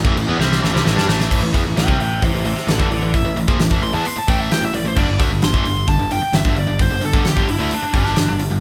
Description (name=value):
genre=hard rock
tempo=131 BPM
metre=4/4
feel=straight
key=A minor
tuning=A4 = 440 Hz
part: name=cranked stack guitar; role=riff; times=0.0-8.6 s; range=G2 to D4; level=-26 LUFS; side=equal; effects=overdrive
part: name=tight distorted guitar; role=riff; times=0.0-8.6 s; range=G2 to D4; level=-26 LUFS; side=equal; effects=distortion
part: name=modern bright picked electric bass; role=bass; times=0.0-8.6 s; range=G1 to G2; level=-25 LUFS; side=equal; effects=none
part: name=big rock drum kit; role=drums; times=0.0-8.5 s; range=crash cymbal, hi-hat, kick drum, snare drum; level=-21 LUFS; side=equal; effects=none
part: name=bluesy overdriven lead guitar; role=melody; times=1.8-8.4 s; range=D4 to C6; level=-25 LUFS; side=equal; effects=distortion
room=light reverb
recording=band playing live in one room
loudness=-18 LUFS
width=mono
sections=0.0-1.3 A section; 1.3-8.6 B section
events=drum fill 0.4-1.3; lead electric guitar solo 1.3-8.6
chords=0.0 Am; 5.0 G5